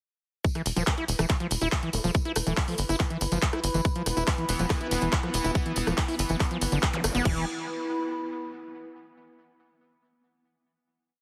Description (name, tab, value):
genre	psychedelic trance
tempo	141 BPM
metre	4/4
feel	straight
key	E phrygian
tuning	A4 = 439 Hz
part	electronic kick drum	drums	0.4-7.3 s	none	-29 LUFS	equal	none
part	techno drum kit	drums	0.4-7.3 s	crash cymbal, handclaps, hi-hat, rim click	-35 LUFS	equal	overdrive
part	warbly tape-like pad	texture	1.1-8.9 s	E4 to B5	-37 LUFS	equal	chorus, built-in reverb, sidechain pumping
part	tambourine	percussion	0.5-7.2 s	none	-38 LUFS	equal	none
part	overdriven acid bass	riff	0.6-7.5 s	D3 to E4	-33 LUFS	equal	distortion, sidechain pumping, dub echo
part	tight sequencer bass	bass	0.7-7.5 s	E1 to G1	-32 LUFS	equal	none
part	vowel-sweep wobble bass	second line	0.8-2.8 s	A3 to B3	-43 LUFS	equal	none
part	pulsing gated texture	sustained chords	4.1-7.3 s	E3 to B3	-39 LUFS	equal	chorus, built-in reverb, sidechain pumping
part	zap	sound effects	6.9-7.0 s	none	-40 LUFS	equal	none
room	light reverb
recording	heavily compressed radio sound, multiband compression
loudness	-27 LUFS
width	mono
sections	0.4-7.3 drop; 7.3-9.0 final chord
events	drop 0.4-7.3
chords	0.4 E5